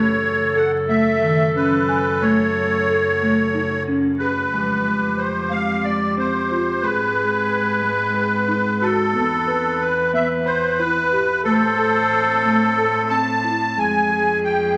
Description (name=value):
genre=contemporary instrumental, chamber music in an uneven meter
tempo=182 BPM (eighths)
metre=7/8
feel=straight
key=unclear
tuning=A4 = 442 Hz
part: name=musette accordion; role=melody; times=0.0-14.7 s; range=A4 to A5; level=-22 LUFS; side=equal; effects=none
part: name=warm clarinet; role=second line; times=0.0-14.8 s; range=G4 to C5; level=-26 LUFS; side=equal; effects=none
part: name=icy glass pad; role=sustained chords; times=0.0-14.8 s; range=B2 to B4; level=-36 LUFS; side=equal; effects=chorus, built-in reverb
part: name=buzzing marimba with soft mallets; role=arpeggios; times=0.0-14.6 s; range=Eb3 to B5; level=-25 LUFS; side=equal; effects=none
part: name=clear cello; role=bass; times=0.0-14.8 s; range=E2 to A2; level=-32 LUFS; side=equal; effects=none
room=wet recital hall reverb, RT60 1.5 s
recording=vinyl crackle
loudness=-19 LUFS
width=mono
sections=0.0-4.5 A section; 4.5-14.8 B section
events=none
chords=0.0 F#m; 4.5 Fmadd9; 6.8 G#m; 9.2 E5; 11.5 Am; 13.8 Fm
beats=0.24 0.57 0.90 1.23 1.56 1.89 | 2.22 2.55 2.88 3.21 3.54 3.87 4.20 | 4.53 4.86 5.19 5.52 5.85 6.18 6.51 | 6.84 7.17 7.50 7.83 8.16 8.49 8.82 | 9.15 9.48 9.81 10.14 10.47 10.80 11.13 | 11.46 11.79 12.12 12.45 12.78 13.11 13.44 | 13.77 14.11 14.44 14.77